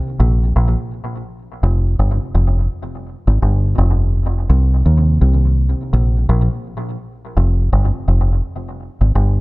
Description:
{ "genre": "reggae", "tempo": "84 BPM", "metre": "4/4", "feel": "swing 58% on 16ths", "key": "unclear", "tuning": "A4 = 440 Hz", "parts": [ { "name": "deep dub fingered electric bass", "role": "solo", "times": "0.2-9.4 s", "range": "F1 to Eb2", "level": "-14 LUFS", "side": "equal", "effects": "tape echo" } ], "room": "light reverb", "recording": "dark, warm production", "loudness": "-14 LUFS", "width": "side -23 dB against mid", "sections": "0.0-9.4 A section", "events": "none", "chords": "none" }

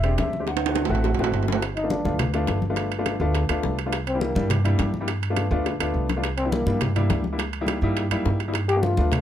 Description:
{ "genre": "Afro-Cuban jazz", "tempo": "208 BPM", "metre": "4/4", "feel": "straight", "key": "unclear", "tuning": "A4 = 441 Hz", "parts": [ { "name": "breathy mellow concert flute", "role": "melody", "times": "0.0-1.3 s", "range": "E5 to F#5", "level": "-31 LUFS", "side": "left 3 dB", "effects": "none" }, { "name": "warm upright piano", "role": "accompaniment", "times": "0.0-9.2 s", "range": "G3 to G4", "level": "-27 LUFS", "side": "left 2 dB", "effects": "none" }, { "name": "upright bass", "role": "bass", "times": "0.0-9.2 s", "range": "E1 to G2", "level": "-25 LUFS", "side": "right 1 dB", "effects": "none" }, { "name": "bongos", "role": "percussion", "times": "0.0-9.2 s", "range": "none", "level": "-33 LUFS", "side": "left 5 dB", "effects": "none" }, { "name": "congas", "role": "percussion", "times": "0.0-9.2 s", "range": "none", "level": "-30 LUFS", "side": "left 1 dB", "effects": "none" }, { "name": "timbales", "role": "percussion", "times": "0.0-9.2 s", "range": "none", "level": "-29 LUFS", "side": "right 10 dB", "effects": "none" }, { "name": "growling trombone", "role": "second line", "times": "1.8-9.1 s", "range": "Bb3 to G4", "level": "-26 LUFS", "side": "left 2 dB", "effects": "none" } ], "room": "little or no reverb", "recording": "close, detailed microphones", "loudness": "-21 LUFS", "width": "side -10 dB against mid", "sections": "0.0-1.6 A section; 1.6-9.2 B section", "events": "drum fill 0.5-1.6, 5.7-6.2; trombone solo 1.6-9.2", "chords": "0.5 D7; 1.6 G7; 3.9 C7; 5.1 G7; 6.2 C7; 7.4 C#dim7; 8.6 G7" }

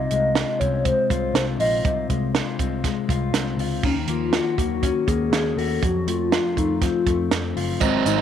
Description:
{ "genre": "jangly indie pop", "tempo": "121 BPM", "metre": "4/4", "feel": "straight", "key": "unclear", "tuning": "A4 = 441 Hz", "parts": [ { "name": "hollow clarinet-like synth lead", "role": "melody", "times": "0.0-8.2 s", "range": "C4 to Eb5", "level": "-24 LUFS", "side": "left 2 dB", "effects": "chorus, tape echo" }, { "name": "mellow electric guitar", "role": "arpeggios", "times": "0.0-8.2 s", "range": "F2 to Gb4", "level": "-26 LUFS", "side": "left 9 dB", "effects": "tape echo" }, { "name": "vintage muted picked electric bass", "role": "bass", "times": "0.0-8.2 s", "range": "Gb1 to F2", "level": "-27 LUFS", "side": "right 1 dB", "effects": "none" }, { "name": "compact cocktail drum kit", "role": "drums", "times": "0.1-8.2 s", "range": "crash cymbal, hi-hat, kick drum, snare drum", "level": "-24 LUFS", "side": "right 4 dB", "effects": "none" }, { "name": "biting overdriven guitar", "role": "accompaniment", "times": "7.8-8.2 s", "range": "Ab2 to Eb4", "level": "-20 LUFS", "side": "right 11 dB", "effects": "none" }, { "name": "tambourine", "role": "percussion", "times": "7.8-8.2 s", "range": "none", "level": "-36 LUFS", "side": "left 15 dB", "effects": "none" } ], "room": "moderate spring reverb, RT60 1.7 s, studio reverb", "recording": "1960s-style stereo with parts hard left and right", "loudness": "-20 LUFS", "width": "side -9 dB against mid", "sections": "0.0-3.8 A section; 3.8-8.2 B section", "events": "none", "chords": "0.0 Fm7; 3.8 Ebm7; 5.8 F" }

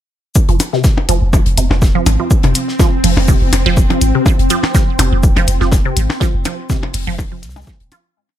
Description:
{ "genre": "minimal techno", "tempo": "123 BPM", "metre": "4/4", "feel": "swing 54% on 16ths", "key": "F minor", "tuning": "A4 = 440 Hz", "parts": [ { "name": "damped 70s drum kit", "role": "drums", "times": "0.4-8.0 s", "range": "hi-hat, shaker, snare drum", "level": "-27 LUFS", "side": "left 4 dB", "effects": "high-pass filter on hats, small room reverb, high-pass filter on snare, high-pass filter on perc, high-pass filter on room" }, { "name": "electronic kick drum", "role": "drums", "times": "0.4-7.8 s", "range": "none", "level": "-13 LUFS", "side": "equal", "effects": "overdrive, small room reverb" }, { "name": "swarming drone", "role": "texture", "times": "1.8-8.2 s", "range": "C4", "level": "-22 LUFS", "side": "left 1 dB", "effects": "built-in reverb, phaser, sidechain pumping" }, { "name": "resonant blip pluck", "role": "riff", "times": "0.5-7.9 s", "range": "C3 to F4", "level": "-19 LUFS", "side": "right 3 dB", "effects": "phaser, sidechain pumping, digital delay" }, { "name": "punchy sub bass", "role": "bass", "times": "0.5-7.9 s", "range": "Eb1 to C2", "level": "-15 LUFS", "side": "equal", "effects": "sidechain pumping" }, { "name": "electronic hi-hat", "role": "drums", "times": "0.6-8.0 s", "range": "none", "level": "-18 LUFS", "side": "left 3 dB", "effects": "small room reverb" }, { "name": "percussion blips", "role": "percussion", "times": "0.6-8.0 s", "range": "none", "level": "-20 LUFS", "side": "left 3 dB", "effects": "small room reverb, ping-pong delay" } ], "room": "studio reverb", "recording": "none", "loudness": "-11 LUFS", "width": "side -11 dB against mid", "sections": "0.4-8.2 groove", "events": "fade-out 5.6-8.2", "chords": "0.4 F5" }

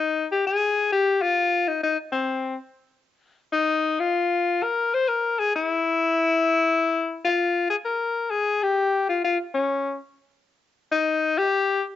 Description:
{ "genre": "jazz", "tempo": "130 BPM", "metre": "4/4", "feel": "swing 67% on 8ths", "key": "unclear", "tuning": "A4 = 440 Hz", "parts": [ { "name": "bright alto saxophone", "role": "solo", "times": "0.0-11.8 s", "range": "C4 to C5", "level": "-21 LUFS", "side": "left 4 dB", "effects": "cassette tape" } ], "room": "moderate spring reverb, RT60 1.1 s", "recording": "home recording on cassette, nothing above 7.8 kHz", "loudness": "-21 LUFS", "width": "side -12 dB against mid", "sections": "0.0-12.0 A section", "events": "none", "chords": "none" }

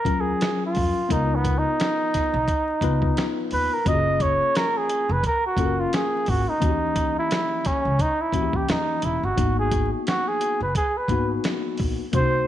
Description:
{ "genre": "hip hop, jazz-hop", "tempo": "87 BPM", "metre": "4/4", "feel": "swing 58% on 16ths", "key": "unclear", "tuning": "A4 = 439 Hz", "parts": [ { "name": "trumpet with bucket mute", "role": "melody", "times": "0.0-12.5 s", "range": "Cb4 to Eb5", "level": "-23 LUFS", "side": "right 1 dB", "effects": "slapback echo" }, { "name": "tine electric piano", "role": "accompaniment", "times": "0.1-12.5 s", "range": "C3 to Cb5", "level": "-28 LUFS", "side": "left 7 dB", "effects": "overdrive, fast stereo tremolo" }, { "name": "upright bass", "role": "bass", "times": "0.1-12.5 s", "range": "Fb1 to F2", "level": "-26 LUFS", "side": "equal", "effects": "none" }, { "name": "dusty soul sampler-style drum kit", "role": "drums", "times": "0.1-12.3 s", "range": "hi-hat, kick drum, snare drum", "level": "-27 LUFS", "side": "equal", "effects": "none" } ], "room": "light reverb, small room ambience", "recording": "1960s-style stereo, vinyl crackle, nothing above 11.0 kHz", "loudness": "-20 LUFS", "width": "side -12 dB against mid", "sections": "0.0-12.5 A section", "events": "muted trumpet solo 0.0-12.5", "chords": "0.0 Ebm11; 1.1 Db13; 3.9 Gbmaj9; 6.6 Eb7b9; 9.4 Abm7" }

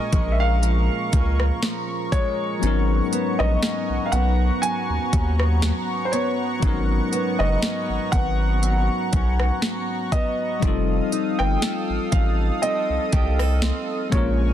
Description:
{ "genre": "contemporary R&B", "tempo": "60 BPM", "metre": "4/4", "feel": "swing 54% on 16ths", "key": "G# dorian", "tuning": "A4 = 440 Hz", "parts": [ { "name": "warm concert grand piano", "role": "melody", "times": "0.0-14.5 s", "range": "B#4 to G#5", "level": "-27 LUFS", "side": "equal", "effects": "digital delay" }, { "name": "bell-like tine electric piano", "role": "accompaniment", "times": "0.0-14.5 s", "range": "F#3 to A#4", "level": "-29 LUFS", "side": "moving between left 15 dB and left 4 dB", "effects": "auto-pan" }, { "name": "chorused pulse-width pad", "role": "sustained chords", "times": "0.0-14.5 s", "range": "B3 to Eb6", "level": "-29 LUFS", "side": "equal", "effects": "none" }, { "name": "fingerpicked acoustic archtop guitar", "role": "arpeggios", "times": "0.0-14.5 s", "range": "G#2 to A4", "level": "-30 LUFS", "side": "right 8 dB", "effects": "digital delay" }, { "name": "saturated sub bass", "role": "bass", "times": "0.1-14.5 s", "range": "F1 to D#2", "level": "-21 LUFS", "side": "equal", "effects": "none" }, { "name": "trap drum kit", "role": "drums", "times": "0.1-14.4 s", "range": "hi-hat, kick drum, rim click, snare drum", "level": "-24 LUFS", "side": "equal", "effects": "overdrive" } ], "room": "digital ambience", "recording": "dense, heavily limited modern master", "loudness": "-19 LUFS", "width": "side -11 dB against mid", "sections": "0.0-14.5 A section", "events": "kick muted 2.6-4.6", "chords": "0.0 A#m7; 2.6 G#m11; 10.6 F7" }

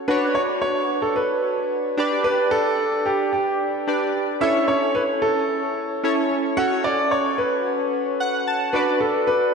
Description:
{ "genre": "pop", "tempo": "111 BPM", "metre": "4/4", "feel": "straight", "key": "unclear", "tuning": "A4 = 440 Hz", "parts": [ { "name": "chorused retro synth keys", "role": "accompaniment", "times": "0.0-9.5 s", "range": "C#4 to A5", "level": "-22 LUFS", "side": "equal", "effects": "none" }, { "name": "clear grand piano", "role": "melody", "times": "0.1-9.5 s", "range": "G4 to F#5", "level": "-22 LUFS", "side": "equal", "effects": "ping-pong delay" } ], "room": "wet lush hall reverb, RT60 2.8 s", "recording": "dreamy mix soaked in reverb", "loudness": "-19 LUFS", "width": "side -5 dB against mid", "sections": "0.0-9.5 A section", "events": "synth keys fill 7.9-8.7", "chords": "0.1 Bmadd9; 2.0 G; 4.4 A; 6.6 F#m; 8.7 Bm" }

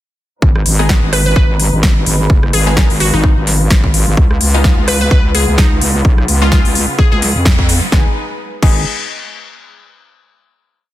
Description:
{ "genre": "bass house", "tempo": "128 BPM", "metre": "4/4", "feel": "swing 56% on 16ths", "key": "G# dorian", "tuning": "A4 = 440 Hz", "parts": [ { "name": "muted studio string section", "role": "sustained chords", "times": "0.4-8.1 s", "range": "C#3 to B4", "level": "-24 LUFS", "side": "equal", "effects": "sidechain pumping, low-pass filter" }, { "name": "wobble bass", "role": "bass", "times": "0.4-8.8 s", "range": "F#1 to E#2", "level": "-14 LUFS", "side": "equal", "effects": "chorus, tube saturation, sidechain pumping" }, { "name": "electronic kick drum", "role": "drums", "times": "0.4-8.7 s", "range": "none", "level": "-11 LUFS", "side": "equal", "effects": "overdrive" }, { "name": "big-room dance drum kit", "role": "drums", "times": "0.6-8.7 s", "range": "crash cymbal, hi-hat, rim click, snare drum", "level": "-17 LUFS", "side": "left 1 dB", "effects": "overdrive" }, { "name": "orchestra-hit-like synth stab", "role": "stabs", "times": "0.8-8.8 s", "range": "G#3 to A#4", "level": "-22 LUFS", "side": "left 2 dB", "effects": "built-in reverb, vintage 12-bit sampler grit, sidechain pumping, ping-pong delay" }, { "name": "glassy wavetable pluck", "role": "melody", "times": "1.1-7.2 s", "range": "D#4 to B4", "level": "-19 LUFS", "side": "left 1 dB", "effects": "chorus, ping-pong delay" } ], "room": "digital ambience", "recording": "dense, heavily limited modern master", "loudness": "-10 LUFS", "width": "side -14 dB against mid", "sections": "0.4-7.9 drop; 7.9-9.8 final chord", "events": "drop 0.4-7.9; band accent 7.5", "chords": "0.4 G#m; 4.2 C#7; 7.9 G#m" }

